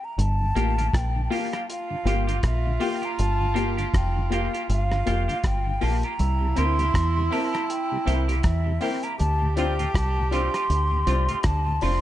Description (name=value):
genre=roots reggae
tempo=80 BPM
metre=4/4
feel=swing 58% on 16ths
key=G dorian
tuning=A4 = 439 Hz
part: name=mellow hollow silver concert flute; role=melody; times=0.0-12.0 s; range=E5 to C6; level=-29 LUFS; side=equal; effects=tape echo
part: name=deep dub fingered electric bass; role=bass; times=0.2-12.0 s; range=F1 to E2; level=-24 LUFS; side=equal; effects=none
part: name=cloth-damped thuddy drum kit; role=drums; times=0.2-12.0 s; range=hi-hat, kick drum, rim click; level=-29 LUFS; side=equal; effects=none
part: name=mellow tonewheel organ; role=accompaniment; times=0.4-11.9 s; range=D2 to G4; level=-36 LUFS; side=left 2 dB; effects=slow rotary speaker
part: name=semi-hollow electric guitar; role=accompaniment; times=0.6-12.0 s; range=A3 to G4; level=-34 LUFS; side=right 2 dB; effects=tape echo
part: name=clear upright piano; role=stabs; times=0.6-12.0 s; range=Bb3 to C5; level=-32 LUFS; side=left 5 dB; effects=none
part: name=bright tenor saxophone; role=second line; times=1.7-11.8 s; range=E4 to G4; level=-32 LUFS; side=right 6 dB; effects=tape echo
room=light reverb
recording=nothing above 10.7 kHz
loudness=-22 LUFS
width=side -13 dB against mid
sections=0.2-12.0 A section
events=break 0.0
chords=0.2 Gm7; 6.2 C7; 9.2 Dm7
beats=| 0.18 0.93 1.68 2.44 | 3.19 3.94 4.69 5.44 | 6.19 6.94 7.70 8.45 | 9.20 9.95 10.70 11.45